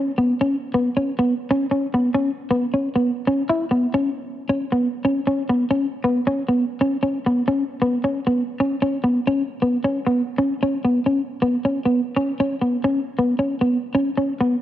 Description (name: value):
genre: highlife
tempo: 135 BPM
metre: 4/4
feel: swing 54% on 16ths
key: unclear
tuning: A4 = 436 Hz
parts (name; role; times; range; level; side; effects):
- clean electric guitar; solo; 0.0-14.6 s; B3 to E4; -19 LUFS; equal; analog chorus, cassette tape
room: light reverb, digital ambience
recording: home recording on cassette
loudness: -19 LUFS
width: side -12 dB against mid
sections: 0.0-5.7 A section; 5.7-14.6 B section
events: none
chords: none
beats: | 0.39 0.84 1.28 1.72 | 2.17 2.61 3.05 3.50 | 3.94 4.38 4.83 5.27 | 5.71 6.16 6.60 7.05 | 7.49 7.94 8.38 8.83 | 9.28 9.72 10.17 10.61 | 11.06 11.50 11.95 12.40 | 12.84 13.29 13.73 14.18